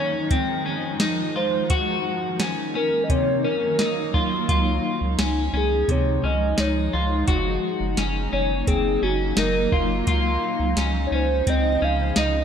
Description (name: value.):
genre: dream pop.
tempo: 86 BPM.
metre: 4/4.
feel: straight.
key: Db major.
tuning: A4 = 440 Hz.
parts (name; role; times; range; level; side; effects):
warbly nostalgic lead; melody; 0.0-12.4 s; Gb4 to F5; -26 LUFS; right 1 dB; chorus, ping-pong delay.
granular cloud pad; sustained chords; 0.0-12.4 s; Db3 to C5; -27 LUFS; equal; built-in reverb, analog chorus.
clean electric guitar; arpeggios; 0.0-12.4 s; C3 to Gb4; -26 LUFS; left 3 dB; lush chorus, ping-pong delay.
soft vintage rhythm box; drums; 0.3-12.3 s; hi-hat, kick drum, snare drum; -24 LUFS; equal; overdrive.
round analog bass; bass; 4.5-12.4 s; Gb1 to Db2; -25 LUFS; equal; none.
room: moderate plate reverb, RT60 2.4 s.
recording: bright 1980s-style digital production.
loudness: -20 LUFS.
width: side -8 dB against mid.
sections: 0.0-12.4 A section.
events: none.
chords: 0.0 Dbmaj9; 1.7 Gb6; 4.5 Dbmaj9; 7.3 Gb6; 10.1 Dbmaj9.